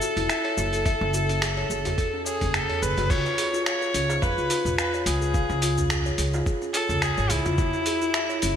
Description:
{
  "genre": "organic downtempo",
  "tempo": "107 BPM",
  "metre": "4/4",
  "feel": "swing 55% on 16ths",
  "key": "unclear",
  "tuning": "A4 = 440 Hz",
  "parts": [
    { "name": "clear kamancheh", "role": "melody", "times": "0.0-8.6 s", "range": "E4 to C#5", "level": "-27 LUFS", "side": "equal", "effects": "ping-pong delay" },
    { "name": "kalimba", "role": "arpeggios", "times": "0.0-8.6 s", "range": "C#4 to E#5", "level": "-28 LUFS", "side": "left 1 dB", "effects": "digital delay" },
    { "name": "dusty soul sampler-style drum kit", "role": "drums", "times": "0.0-8.5 s", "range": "cabasa, crash cymbal, finger snaps, hi-hat", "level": "-29 LUFS", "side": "equal", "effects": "overdrive, studio reverb, gated reverb" },
    { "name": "darbuka", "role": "percussion", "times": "0.0-8.0 s", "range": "none", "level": "-36 LUFS", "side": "right 2 dB", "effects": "none" },
    { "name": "upright bass", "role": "bass", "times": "0.2-8.6 s", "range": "E1 to E#2", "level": "-28 LUFS", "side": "equal", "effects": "none" },
    { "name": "electronic kick drum", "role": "drums", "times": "0.9-7.7 s", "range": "none", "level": "-26 LUFS", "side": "equal", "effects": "overdrive, studio reverb" }
  ],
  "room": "moderate lush hall reverb, RT60 3.0 s",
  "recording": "bright 1980s-style digital production",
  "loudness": "-22 LUFS",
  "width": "side -8 dB against mid",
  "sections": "0.0-3.1 A section; 3.1-8.6 A section",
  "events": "none",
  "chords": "0.0 F#m7; 3.1 C#; 7.6 F#7(no3)",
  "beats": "0.29 | 0.85 1.42 1.98 2.54 | 3.10 3.66 4.22 4.78 | 5.34 5.90 6.46 7.02 | 7.58 8.14"
}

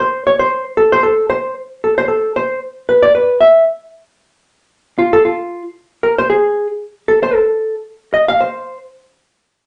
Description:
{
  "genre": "jazz",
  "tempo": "229 BPM",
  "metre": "4/4",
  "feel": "swing 59% on 8ths",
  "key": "unclear",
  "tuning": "A4 = 439 Hz",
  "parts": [
    { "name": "hollow-body jazz guitar", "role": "solo", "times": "0.0-8.8 s", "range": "F4 to F5", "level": "-14 LUFS", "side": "equal", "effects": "none" }
  ],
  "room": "wet studio reverb, RT60 0.6 s",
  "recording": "nothing above 10.3 kHz",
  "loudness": "-14 LUFS",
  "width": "mono",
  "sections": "0.0-5.0 A section; 5.0-9.7 B section",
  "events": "hollow-body jazz guitar solo 5.0-9.7",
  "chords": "none",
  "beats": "0.23 0.49 | 0.75 1.02 1.28 1.54 | 1.80 2.07 2.33 2.59 | 2.85 3.12 3.38 3.64 | 3.90 4.17 4.43 4.69 | 4.95 5.21 5.48 5.74 | 6.00 6.26 6.52 6.79 | 7.05 7.31 7.57 7.83 | 8.10 8.36 8.62"
}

